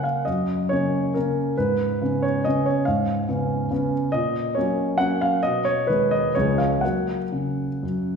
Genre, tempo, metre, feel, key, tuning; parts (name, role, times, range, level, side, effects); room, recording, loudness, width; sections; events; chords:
classical, piano waltz; 118-149 BPM; 3/4; rubato; F# major; A4 = 440 Hz
warm grand piano; solo; 0.0-8.2 s; C#2 to F#5; -20 LUFS; equal
wet recital hall reverb, RT60 1.7 s; heard from further back in the room; -20 LUFS; side -6 dB against mid
0.0-8.2 A section
0.0 F#; 1.6 C#7/G#; 4.1 F#/A#; 5.4 G#m/B; 6.3 C#; 6.8 F#